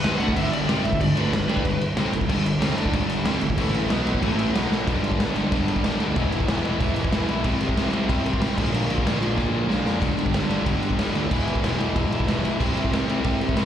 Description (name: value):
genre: punk rock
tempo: 186 BPM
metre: 4/4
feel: straight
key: G major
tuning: A4 = 441 Hz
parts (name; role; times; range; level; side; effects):
- bluesy overdriven lead guitar; melody; 0.0-1.8 s; B4 to F#5; -28 LUFS; equal; distortion, slapback echo
- distorted electric guitar; riff; 0.0-13.7 s; E2 to G4; -28 LUFS; left 9 dB; distortion, slapback echo
- sludgy distorted guitar; riff; 0.0-13.7 s; G2 to G4; -28 LUFS; right 8 dB; overdrive, slapback echo
- sludgy distorted guitar; riff; 0.0-13.7 s; E2 to G4; -33 LUFS; equal; none
- fuzz picked electric bass; bass; 0.0-13.7 s; E1 to G2; -28 LUFS; equal; overdrive
- raw garage drum kit; drums; 0.0-13.6 s; crash cymbal, kick drum, snare drum; -24 LUFS; equal; none
room: little or no reverb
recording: live gig heard through the venue's PA, recital hall reverb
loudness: -20 LUFS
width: side -10 dB against mid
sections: 0.0-4.9 A section; 4.9-13.7 B section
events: drum fill 4.7, 9.4-10.0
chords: 0.0 G; 3.6 A5; 3.9 B5; 4.2 A5; 4.5 B5; 4.9 G; 6.2 Em; 7.4 C; 8.6 Bb; 10.0 G; 11.3 Em; 12.6 C